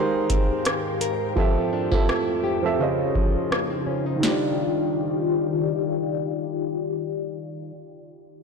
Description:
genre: contemporary R&B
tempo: 84 BPM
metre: 4/4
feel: swing 54% on 16ths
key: Eb major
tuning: A4 = 441 Hz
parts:
  - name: dark concert grand piano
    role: accompaniment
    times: 0.0-8.4 s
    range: Db3 to F5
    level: -27 LUFS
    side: right 6 dB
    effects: low-pass filter
  - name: ethereal airy pad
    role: sustained chords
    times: 0.0-7.6 s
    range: F2 to D5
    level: -27 LUFS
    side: left 3 dB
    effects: ensemble chorus, built-in reverb, phaser, low-pass filter
  - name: nylon-string guitar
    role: arpeggios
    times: 0.0-7.8 s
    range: Db3 to Bb4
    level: -29 LUFS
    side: left 7 dB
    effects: low-pass filter, ping-pong delay
  - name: booming analog drum machine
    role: drums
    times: 0.3-4.4 s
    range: hi-hat, kick drum, rim click, snare drum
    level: -24 LUFS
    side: equal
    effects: overdrive
room: light reverb, small room ambience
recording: blown-out, overdriven recording, overdrive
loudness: -21 LUFS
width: side -5 dB against mid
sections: 0.0-4.2 A section; 4.2-7.1 B section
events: filter sweep 0.0-4.2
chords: 0.0 Abmaj9; 1.4 Fmaj9; 2.8 Dbmaj9; 4.2 Ebmaj9

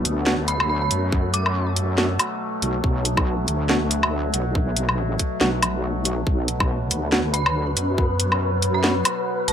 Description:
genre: deep dubstep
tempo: 140 BPM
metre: 4/4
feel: swing 57% on 16ths, half-time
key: B minor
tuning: A4 = 440 Hz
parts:
  - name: overtone-sweeping drone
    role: sustained chords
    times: 0.0-9.5 s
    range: B2 to B3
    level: -28 LUFS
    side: left 1 dB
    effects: chorus, built-in reverb
  - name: tine electric piano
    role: stabs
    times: 0.0-8.9 s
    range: B3 to F#4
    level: -28 LUFS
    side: right 2 dB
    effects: dub echo
  - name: wobble bass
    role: bass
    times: 0.0-9.5 s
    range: B1 to F#2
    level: -24 LUFS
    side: equal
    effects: chorus
  - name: garage drum kit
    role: drums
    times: 0.1-9.5 s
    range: hi-hat, snare drum, woodblock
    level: -22 LUFS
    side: left 1 dB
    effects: none
  - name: dark detuned synth bell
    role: melody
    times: 0.5-1.7, 7.3-9.5 s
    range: A5 to D6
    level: -29 LUFS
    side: right 2 dB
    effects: chorus, tremolo, dub echo
  - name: electronic kick drum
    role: drums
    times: 1.1-8.1 s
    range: none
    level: -22 LUFS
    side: equal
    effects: none
  - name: wind-like tuned noise texture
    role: texture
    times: 6.6-9.5 s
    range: B4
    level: -28 LUFS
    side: left 3 dB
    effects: built-in reverb
room: light reverb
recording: none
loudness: -19 LUFS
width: side -8 dB against mid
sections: 0.0-9.5 A section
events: none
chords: 0.0 Bm

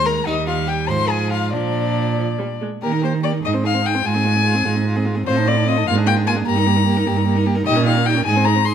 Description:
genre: quick classical-period movement for string quartet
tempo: 99 BPM (dotted quarters)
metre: 6/8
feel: rubato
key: Eb major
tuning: A4 = 445 Hz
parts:
  - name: dark violin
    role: melody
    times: 0.0-8.7 s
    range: Bb4 to C6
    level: -21 LUFS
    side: left 8 dB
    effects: none
  - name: rich violin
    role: second line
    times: 0.0-8.7 s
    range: D4 to C5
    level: -27 LUFS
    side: left 2 dB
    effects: none
  - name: warm viola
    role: accompaniment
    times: 0.0-8.7 s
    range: F3 to Eb4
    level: -24 LUFS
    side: right 3 dB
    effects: none
  - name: rich cello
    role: bass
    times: 0.0-8.7 s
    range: Eb2 to Eb3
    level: -19 LUFS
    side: right 4 dB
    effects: none
room: light reverb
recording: none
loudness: -16 LUFS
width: side -8 dB against mid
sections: 0.0-2.8 A section; 2.8-8.7 B section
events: none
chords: 0.3 Eb; 0.9 Fm/Ab; 1.5 Bb; 2.8 Eb; 3.4 Ab; 4.1 Fm/Ab; 5.3 F7/A; 5.9 Bb7/Ab; 6.5 Eb/G; 7.7 Eb7/Bb

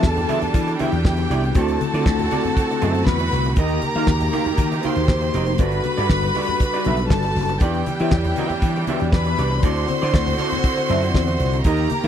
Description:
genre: disco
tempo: 119 BPM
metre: 4/4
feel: straight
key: unclear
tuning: A4 = 440 Hz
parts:
  - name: warm studio violin section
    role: second line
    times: 0.0-12.1 s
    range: G4 to C6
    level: -24 LUFS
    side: left 1 dB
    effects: none
  - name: electric guitar through a small old amp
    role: accompaniment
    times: 0.0-12.1 s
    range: B3 to F5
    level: -27 LUFS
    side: right 7 dB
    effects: lush chorus
  - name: mellow tine electric piano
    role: accompaniment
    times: 0.0-12.1 s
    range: D3 to F#5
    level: -25 LUFS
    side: left 3 dB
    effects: medium stereo tremolo
  - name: clear symphonic string section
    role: sustained chords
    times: 0.0-12.1 s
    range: D3 to B4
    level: -29 LUFS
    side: right 3 dB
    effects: none
  - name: vintage slap bass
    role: bass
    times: 0.0-12.1 s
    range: F1 to E3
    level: -22 LUFS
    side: equal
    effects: none
  - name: damped 70s drum kit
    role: drums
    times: 0.0-12.1 s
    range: hi-hat, kick drum, snare drum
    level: -19 LUFS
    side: equal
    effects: none
  - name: congas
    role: percussion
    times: 0.0-12.0 s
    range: none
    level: -32 LUFS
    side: left 4 dB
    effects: none
room: little or no reverb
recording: dry, close 1970s-style studio recording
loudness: -17 LUFS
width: side -9 dB against mid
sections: 0.0-12.1 A section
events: tine electric piano fill 10.6-11.7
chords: 0.0 Em7; 1.5 D7; 3.6 Eb; 5.6 Gmaj7; 7.6 Em7; 9.6 D7

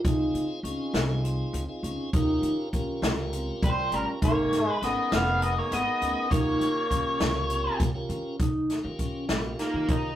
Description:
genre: progressive instrumental, band music in an uneven meter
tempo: 201 BPM (eighths)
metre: 7/8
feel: straight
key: Eb mixolydian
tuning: A4 = 439 Hz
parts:
  - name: tonewheel organ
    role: accompaniment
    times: 0.0-10.1 s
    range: Cb3 to Bb4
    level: -35 LUFS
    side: equal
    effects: overdrive, slow rotary speaker
  - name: vibraphone with soft mallets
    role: arpeggios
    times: 0.0-9.9 s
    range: Cb4 to Eb4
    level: -31 LUFS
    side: equal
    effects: none
  - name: upright bass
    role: bass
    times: 0.0-10.1 s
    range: F1 to Eb3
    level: -33 LUFS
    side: equal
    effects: none
  - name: open jazz drum kit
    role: drums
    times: 0.0-10.0 s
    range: hi-hat, kick drum, snare drum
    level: -28 LUFS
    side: equal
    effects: none
  - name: octave-fuzz lead guitar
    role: melody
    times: 3.6-10.2 s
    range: G3 to F5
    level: -29 LUFS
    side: left 1 dB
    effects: distortion
  - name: bright trombone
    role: second line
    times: 3.6-7.8 s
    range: G3 to Cb4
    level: -30 LUFS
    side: equal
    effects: none
room: wet studio reverb, RT60 0.6 s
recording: rough rehearsal-room recording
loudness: -24 LUFS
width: side -12 dB against mid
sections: 0.0-8.4 A section; 8.4-10.2 B section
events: none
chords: 0.0 Dbmaj9; 2.1 Eb7; 4.2 Abmadd9; 6.3 Eb7

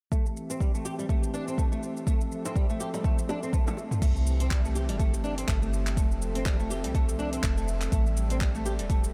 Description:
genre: afro house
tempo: 123 BPM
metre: 4/4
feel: swing 57% on 16ths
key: unclear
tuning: A4 = 440 Hz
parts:
  - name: warm analog pad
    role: sustained chords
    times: 0.1-9.1 s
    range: E3 to E5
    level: -39 LUFS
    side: equal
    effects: chorus, sidechain pumping
  - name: flamenco guitar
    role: arpeggios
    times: 0.1-9.0 s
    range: G3 to G4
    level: -37 LUFS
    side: equal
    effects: ensemble chorus, sidechain pumping, low-pass filter, analog delay
  - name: deep house drum kit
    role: drums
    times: 0.1-9.1 s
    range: crash cymbal, handclaps, hi-hat, shaker, toms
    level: -39 LUFS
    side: equal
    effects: overdrive
  - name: electronic kick drum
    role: drums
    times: 0.1-9.0 s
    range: none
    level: -28 LUFS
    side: equal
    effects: overdrive
  - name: bongos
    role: percussion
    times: 2.5-4.0 s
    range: none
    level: -42 LUFS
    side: equal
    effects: none
  - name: warm 808-style bass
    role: bass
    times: 4.0-9.1 s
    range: E1 to C2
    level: -32 LUFS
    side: equal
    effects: sidechain pumping
room: light reverb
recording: none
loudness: -28 LUFS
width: mono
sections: 0.1-4.0 A section; 4.0-9.1 B section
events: drum fill 3.5-4.0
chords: 0.1 C; 2.1 Fmaj7; 4.0 C; 6.0 Fmaj7; 7.9 Am7

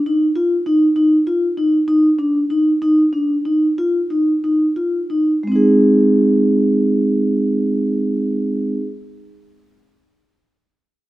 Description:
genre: contemporary instrumental, contemporary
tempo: 173-199 BPM (eighths)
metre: 11/8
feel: straight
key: Ab lydian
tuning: A4 = 437 Hz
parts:
  - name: vibraphone with soft mallets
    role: solo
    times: 0.1-8.8 s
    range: Ab3 to Ab4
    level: -14 LUFS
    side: equal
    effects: none
room: light reverb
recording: close, detailed microphones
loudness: -14 LUFS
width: side -16 dB against mid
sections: 0.0-5.4 A section; 5.4-9.3 B section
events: slowing down 0.4-5.4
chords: 0.4 Ebsus2; 1.9 N.C.; 3.8 Ebsus2; 5.4 Ab

